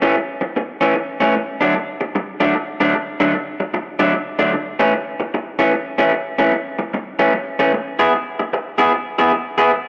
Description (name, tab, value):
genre	blues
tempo	151 BPM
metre	4/4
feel	swing 63% on 8ths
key	A major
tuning	A4 = 440 Hz
part	electric guitar through a small old amp	solo	0.0-9.8 s	A2 to G#4	-18 LUFS	equal	none
room	wet echo chamber reverb, RT60 2.5 s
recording	none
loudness	-19 LUFS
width	mono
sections	0.0-9.9 A section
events	none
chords	0.0 A; 1.4 D; 4.5 A; 7.7 E